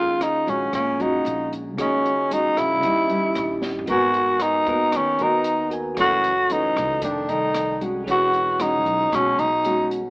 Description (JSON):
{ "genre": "bossa nova", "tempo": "114 BPM", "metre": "4/4", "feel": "straight", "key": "Eb minor, G# minor from 3.9 s", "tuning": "A4 = 439 Hz", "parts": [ { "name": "growling tenor saxophone", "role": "melody", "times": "0.0-9.9 s", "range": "Db4 to F#4", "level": "-20 LUFS", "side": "equal", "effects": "none" }, { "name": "barky tine electric piano", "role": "accompaniment", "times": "0.0-10.1 s", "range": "Db4 to G#5", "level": "-30 LUFS", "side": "right 1 dB", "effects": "none" }, { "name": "nylon-string guitar", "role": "accompaniment", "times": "0.0-10.1 s", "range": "F2 to A#4", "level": "-27 LUFS", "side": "equal", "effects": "none" }, { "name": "upright bass", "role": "bass", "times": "0.0-10.1 s", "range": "E1 to Eb2", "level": "-36 LUFS", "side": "equal", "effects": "none" }, { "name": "open jazz drum kit", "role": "drums", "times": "0.2-10.0 s", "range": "hi-hat, kick drum, rim click, snare drum, toms", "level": "-35 LUFS", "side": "equal", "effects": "none" } ], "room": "light reverb", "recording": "AM radio sound", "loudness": "-19 LUFS", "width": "side -27 dB against mid", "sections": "0.0-3.9 A section; 3.9-10.1 B section", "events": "drum fill 3.6", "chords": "0.0 Ebm11; 2.8 Eb7b9; 3.9 G#m9; 6.0 F#m7; 7.0 F13; 8.1 E69" }